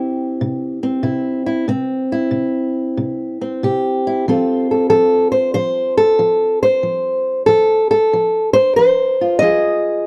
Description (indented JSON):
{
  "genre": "blues",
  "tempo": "93 BPM",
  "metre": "4/4",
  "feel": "swing 67% on 8ths",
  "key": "unclear",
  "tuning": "A4 = 440 Hz",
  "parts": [
    { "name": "fingerpicked old ladder-braced acoustic guitar", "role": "solo", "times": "0.0-10.1 s", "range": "C3 to Eb5", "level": "-16 LUFS", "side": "equal", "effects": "none" }
  ],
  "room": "small room ambience",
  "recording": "dry, close 1970s-style studio recording",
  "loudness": "-16 LUFS",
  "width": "mono",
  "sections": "0.0-10.1 A section",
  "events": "none",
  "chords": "0.0 C; 4.3 F; 9.4 Fm7"
}